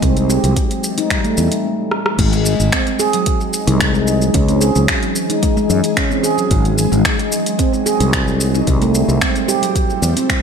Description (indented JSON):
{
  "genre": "organic downtempo",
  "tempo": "111 BPM",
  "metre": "4/4",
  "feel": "straight",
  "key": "G# phrygian dominant",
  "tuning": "A4 = 443 Hz",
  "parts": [
    { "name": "ethereal airy pad", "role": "sustained chords", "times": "0.0-10.4 s", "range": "E3 to G#4", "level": "-23 LUFS", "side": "left 1 dB", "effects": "ensemble chorus, built-in reverb, phaser, sidechain pumping" },
    { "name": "handpan", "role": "arpeggios", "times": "0.0-10.4 s", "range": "F#3 to G#4", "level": "-18 LUFS", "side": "right 1 dB", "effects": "digital delay" },
    { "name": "fretless electric bass", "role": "bass", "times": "0.0-10.1 s", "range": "G#1 to F#2", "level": "-16 LUFS", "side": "equal", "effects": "none" },
    { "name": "deep house drum kit", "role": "drums", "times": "0.0-10.4 s", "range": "crash cymbal, finger snaps, hi-hat, rim click, shaker", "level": "-21 LUFS", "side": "equal", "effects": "studio reverb" },
    { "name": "electronic kick drum", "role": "drums", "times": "0.0-10.4 s", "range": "none", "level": "-19 LUFS", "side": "equal", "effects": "studio reverb" }
  ],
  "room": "light reverb, digital ambience",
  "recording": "none",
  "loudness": "-13 LUFS",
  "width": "side -6 dB against mid",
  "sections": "0.0-2.2 A section; 2.2-10.4 B section",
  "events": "stop 1.6-2.2; drum fill 1.9",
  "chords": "0.0 C6; 2.2 G#7; 4.3 C#m; 6.5 G#7; 8.7 C6",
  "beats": "| 0.03 0.56 1.11 1.65 | 2.19 2.73 3.27 3.81 | 4.35 4.89 5.43 5.97 | 6.51 7.05 7.59 8.13 | 8.67 9.21 9.76 10.29"
}